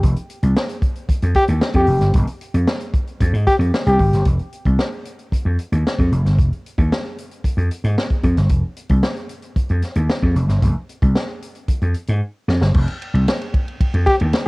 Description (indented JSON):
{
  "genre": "funk",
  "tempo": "113 BPM",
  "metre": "4/4",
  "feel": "straight",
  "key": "F minor",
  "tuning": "A4 = 441 Hz",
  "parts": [
    { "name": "vintage slap bass", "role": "bass", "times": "0.0-14.3 s", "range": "F1 to Ab2", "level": "-17 LUFS", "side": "equal", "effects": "none" },
    { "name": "swinging big-band drum kit", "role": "drums", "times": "0.0-14.5 s", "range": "crash cymbal, hi-hat, kick drum, ride cymbal, snare drum", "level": "-20 LUFS", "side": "equal", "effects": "cassette tape" },
    { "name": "bright trombone", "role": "second line", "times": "1.4-4.2, 14.1-14.5 s", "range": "G4", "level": "-18 LUFS", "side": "left 1 dB", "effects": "none" }
  ],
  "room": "studio ambience",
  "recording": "home recording on cassette",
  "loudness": "-16 LUFS",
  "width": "side -26 dB against mid",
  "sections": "0.0-4.3 A section; 4.3-12.7 B section; 12.7-14.5 A section",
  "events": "drum fill 12.2-12.7",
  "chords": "0.0 Fsus2; 4.3 N.C.; 12.7 F7(no3)"
}